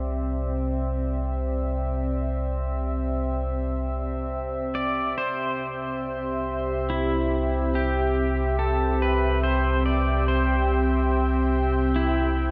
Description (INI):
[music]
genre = ambient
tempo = 71 BPM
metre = 3/4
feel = straight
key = C major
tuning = A4 = 440 Hz
[part]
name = warbly tape-like pad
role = sustained chords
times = 0.0-12.5 s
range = C3 to G5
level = -29 LUFS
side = equal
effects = chorus, built-in reverb
[part]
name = warm sub bass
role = bass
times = 0.0-12.5 s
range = C2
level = -29 LUFS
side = equal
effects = none
[part]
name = pedal steel guitar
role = melody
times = 4.7-12.5 s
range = E4 to D5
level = -30 LUFS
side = equal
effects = delay
[sound]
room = wet cathedral reverb, RT60 5.5 s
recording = in a vast, echoing space, nothing above 7.7 kHz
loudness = -25 LUFS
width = mono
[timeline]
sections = 0.0-5.2 A section; 5.2-12.5 B section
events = none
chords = 0.0 C